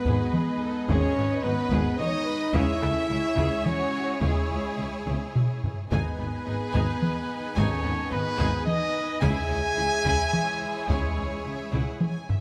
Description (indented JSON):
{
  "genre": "cinematic, epic orchestral film score",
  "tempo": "108 BPM",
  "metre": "3/4",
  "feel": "straight",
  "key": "G# minor",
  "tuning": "A4 = 440 Hz",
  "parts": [
    { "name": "warm symphonic violin section", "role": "melody", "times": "0.0-12.4 s", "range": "E4 to G#5", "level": "-42 LUFS", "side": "equal", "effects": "none" },
    { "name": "warm symphonic violin section", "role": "second line", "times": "0.0-12.0 s", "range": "G#4 to E5", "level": "-41 LUFS", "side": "equal", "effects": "none" },
    { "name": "clear symphonic viola section", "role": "accompaniment", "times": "0.0-12.0 s", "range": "B3 to D#5", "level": "-40 LUFS", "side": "equal", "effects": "none" },
    { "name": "dark French horn section", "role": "sustained chords", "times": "0.0-12.0 s", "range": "G#3 to G#4", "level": "-33 LUFS", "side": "equal", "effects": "none" },
    { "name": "warm symphonic string section", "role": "sustained chords", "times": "0.0-12.4 s", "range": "G#3 to G#5", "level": "-40 LUFS", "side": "equal", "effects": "none" },
    { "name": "clear trumpet", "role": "stabs", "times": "0.0-12.0 s", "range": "G#4 to G#5", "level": "-34 LUFS", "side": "equal", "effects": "none" },
    { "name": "mellow tuba", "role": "bass", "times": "0.1-11.8 s", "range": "G#1 to C#2", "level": "-36 LUFS", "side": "equal", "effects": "none" },
    { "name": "rich symphonic cello section", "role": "bass", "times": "0.1-11.8 s", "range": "G#2 to C#3", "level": "-36 LUFS", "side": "equal", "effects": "none" },
    { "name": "warm symphonic double bass section", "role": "bass", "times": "0.1-11.8 s", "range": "G#1 to C#2", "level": "-35 LUFS", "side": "equal", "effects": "none" },
    { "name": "taiko ensemble", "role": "drums", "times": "0.1-12.4 s", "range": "none", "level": "-31 LUFS", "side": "equal", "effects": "none" },
    { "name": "clear trombone section", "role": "sustained chords", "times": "0.9-12.2 s", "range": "C#3 to B3", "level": "-44 LUFS", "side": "equal", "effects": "none" },
    { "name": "small flute group", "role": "second line", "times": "5.9-12.0 s", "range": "B4 to G#5", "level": "-40 LUFS", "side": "equal", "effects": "none" }
  ],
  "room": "moderate scoring stage reverb, RT60 2.1 s",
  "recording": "none",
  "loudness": "-26 LUFS",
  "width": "mono",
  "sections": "0.0-5.9 A section; 5.9-12.4 A section",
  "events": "drum fill 5.1-5.9, 11.7-12.4",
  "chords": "0.0 G#m; 2.5 C#m; 5.9 G#m; 9.2 C#m",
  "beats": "0.34 | 0.89 1.44 1.99 | 2.54 3.09 3.65 | 4.21 4.78 5.34 | 5.91 6.46 7.01 | 7.57 8.11 8.66 | 9.22 9.77 10.33 | 10.88 11.45 12.01"
}